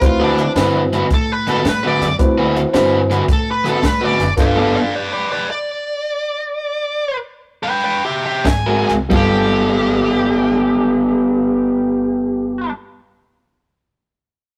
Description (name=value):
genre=electric blues shuffle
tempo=88-110 BPM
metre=4/4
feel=swing 68% on 8ths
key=G mixolydian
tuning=A4 = 440 Hz
part: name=smooth overdriven lead guitar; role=melody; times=0.0-12.7 s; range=D4 to Ab5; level=-22 LUFS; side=equal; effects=none
part: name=dark upright piano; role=accompaniment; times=0.0-4.8, 9.1-12.7 s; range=G2 to C5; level=-22 LUFS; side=equal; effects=none
part: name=upright bass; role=bass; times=0.0-4.8, 8.4-12.7 s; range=F#1 to A2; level=-27 LUFS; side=equal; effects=none
part: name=compact cocktail drum kit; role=drums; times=0.0-4.5, 8.4-9.3 s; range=crash cymbal, hi-hat, kick drum, snare drum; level=-21 LUFS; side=equal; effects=none
part: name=raw garage guitar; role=riff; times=0.2-4.8, 8.4-12.7 s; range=D3 to B4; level=-19 LUFS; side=equal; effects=overdrive
room=light reverb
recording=rough rehearsal-room recording, tube saturation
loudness=-17 LUFS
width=mono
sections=0.0-9.1 A section; 9.1-14.5 B section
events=slowing down 4.4-9.1; stop 4.4-8.4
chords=0.0 D13; 4.4 G9; 8.4 Ab9; 9.1 G9